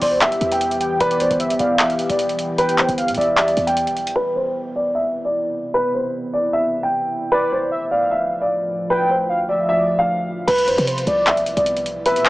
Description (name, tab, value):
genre	hip hop, trap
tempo	152 BPM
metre	4/4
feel	half-time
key	unclear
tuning	A4 = 440 Hz
part	dark concert grand piano	melody	0.0-12.3 s	B4 to G5	-19 LUFS	equal	low-pass filter
part	warm velvety synth lead	second line	0.0-3.7, 7.3-12.3 s	B4 to G5	-23 LUFS	right 1 dB	chorus, digital delay
part	deep dark ambient pad	sustained chords	0.0-12.3 s	D2 to G4	-27 LUFS	equal	chorus, built-in reverb, low-pass filter
part	short 808-style bass	bass	0.0-4.1, 10.5-12.3 s	E1 to C3	-29 LUFS	equal	none
part	trap drum kit	drums	0.0-4.2, 10.5-12.3 s	crash cymbal, handclaps, hi-hat	-22 LUFS	equal	none
room	light reverb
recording	small speaker sound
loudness	-17 LUFS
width	side -18 dB against mid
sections	0.0-4.2 A section; 4.2-10.5 B section; 10.5-12.3 A section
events	filter sweep 4.2-10.5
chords	0.0 Em; 4.2 Cmaj7; 7.3 Dm; 10.5 Cmaj7